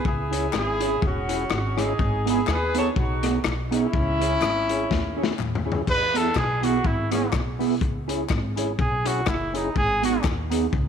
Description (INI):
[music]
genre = ska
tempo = 124 BPM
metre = 4/4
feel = swing 56% on 8ths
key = unclear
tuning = A4 = 441 Hz
[part]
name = mellow horn section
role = melody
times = 0.0-5.4 s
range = C#4 to C#5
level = -26 LUFS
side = left 1 dB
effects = none
[part]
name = upright bass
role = bass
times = 0.1-10.9 s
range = E1 to E2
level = -29 LUFS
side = equal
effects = none
[part]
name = crunchy breakbeat drum kit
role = drums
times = 0.1-10.9 s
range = crash cymbal, hi-hat, kick drum, rim click, snare drum, toms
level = -27 LUFS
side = left 3 dB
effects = slapback echo
[part]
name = mellow electric guitar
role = accompaniment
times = 0.3-10.7 s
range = B3 to C#5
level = -29 LUFS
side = right 13 dB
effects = wide subtle chorus, slapback echo
[part]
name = percussive tonewheel organ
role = stabs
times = 0.3-10.7 s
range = B3 to G#4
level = -32 LUFS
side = left 11 dB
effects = chorus vibrato, stopped rotary speaker
[part]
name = group handclap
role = percussion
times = 0.5-10.4 s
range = none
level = -40 LUFS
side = left 9 dB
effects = slapback echo
[part]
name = warm trumpet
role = melody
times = 5.9-10.2 s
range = C#4 to B4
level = -25 LUFS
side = right 1 dB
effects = none
[sound]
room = moderate echo chamber reverb, RT60 2.4 s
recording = 1960s-style stereo with parts hard left and right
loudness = -21 LUFS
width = side -7 dB against mid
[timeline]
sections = 0.0-5.9 A section; 5.9-10.9 B section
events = drum fill 4.9-5.9; trumpet solo 5.9-10.9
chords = 0.1 C#m; 2.0 G#m; 3.9 C#m; 5.9 E; 7.8 C#m; 9.8 G#m